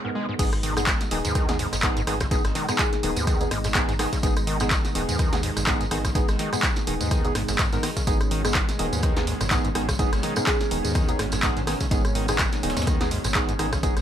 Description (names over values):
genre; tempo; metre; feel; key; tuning
acid house; 125 BPM; 4/4; swing 56% on 16ths; G# minor; A4 = 440 Hz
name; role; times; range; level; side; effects
lush unison pad; sustained chords; 0.0-14.0 s; B2 to D#4; -32 LUFS; right 1 dB; chorus, sidechain pumping
overdriven acid bass; riff; 0.0-13.9 s; G#2 to G#3; -31 LUFS; equal; distortion, wide subtle chorus, sidechain pumping, digital delay
percussive organ stab; stabs; 0.0-13.9 s; B3 to A#4; -30 LUFS; right 1 dB; wide subtle chorus, digital delay
round analog bass; bass; 0.4-14.0 s; D#1 to D#2; -30 LUFS; equal; sidechain pumping
breakbeat sampler-style drum kit; drums; 0.4-14.0 s; hi-hat, snare drum; -38 LUFS; equal; none
electronic kick drum; drums; 0.4-13.9 s; none; -25 LUFS; equal; overdrive
punchy analog drum machine; drums; 0.4-14.0 s; crash cymbal, handclaps, hi-hat, rim click, snare drum; -28 LUFS; equal; none
tambourine; percussion; 0.4-14.0 s; none; -34 LUFS; right 4 dB; none
thumb-piano-like synth pluck; melody; 2.8-3.3, 10.5-11.0 s; G#4; -31 LUFS; equal; wide subtle chorus, digital delay
room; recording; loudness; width
light reverb; none; -21 LUFS; side -10 dB against mid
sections
0.4-14.0 A section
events
drop 0.4-14.0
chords
0.4 G#m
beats
| 0.39 0.87 1.35 1.83 | 2.31 2.79 3.27 3.75 | 4.23 4.71 5.19 5.67 | 6.15 6.63 7.11 7.59 | 8.07 8.55 9.03 9.51 | 9.99 10.47 10.95 11.43 | 11.91 12.39 12.87 13.35 | 13.83